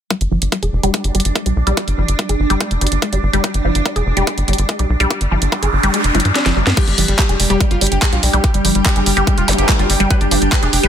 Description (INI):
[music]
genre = psychedelic trance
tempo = 144 BPM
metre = 4/4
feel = straight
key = unclear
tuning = A4 = 441 Hz
[part]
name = evolving wavetable pad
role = sustained chords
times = 0.4-10.9 s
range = G3 to G4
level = -23 LUFS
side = right 2 dB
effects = ensemble chorus, built-in reverb, phaser, sidechain pumping
[part]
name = wide unison pluck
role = riff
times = 0.1-10.9 s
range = F3 to Ab4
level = -21 LUFS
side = left 1 dB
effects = auto-pan, sidechain pumping, ping-pong delay
[part]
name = electronic kick drum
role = drums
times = 0.1-10.6 s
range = none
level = -16 LUFS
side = equal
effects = overdrive, high-pass filter on kick
[part]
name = garage drum kit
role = drums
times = 0.1-10.9 s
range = crash cymbal, handclaps, hi-hat, snare drum, toms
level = -19 LUFS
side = right 1 dB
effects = overdrive
[part]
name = tight sequencer bass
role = bass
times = 0.2-10.9 s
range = F1 to G2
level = -17 LUFS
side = equal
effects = none
[part]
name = noise sweep and zap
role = sound effects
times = 5.4-6.8, 9.5-9.6 s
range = none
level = -23 LUFS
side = equal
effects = none
[part]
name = overdriven synth lead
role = melody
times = 6.8-10.9 s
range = G3 to B4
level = -22 LUFS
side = equal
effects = distortion, phaser, vintage 12-bit sampler grit, sidechain pumping, ping-pong delay
[part]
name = ethereal airy pad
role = texture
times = 7.6-10.9 s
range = D4 to G5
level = -26 LUFS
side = right 2 dB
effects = ensemble chorus, built-in reverb, sidechain pumping
[sound]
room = light reverb, digital ambience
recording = dense, heavily limited modern master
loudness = -13 LUFS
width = side -9 dB against mid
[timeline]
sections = 0.1-6.8 A section; 6.8-10.9 B section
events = filter sweep on synth arpeggio sound 0.1-6.8, 6.8-10.9; filter sweep on ambient pad 0.1-6.8; noise sweep 5.4-6.8; kick drops out 5.9-6.8; drum fill 6.1-6.8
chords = 0.1 G5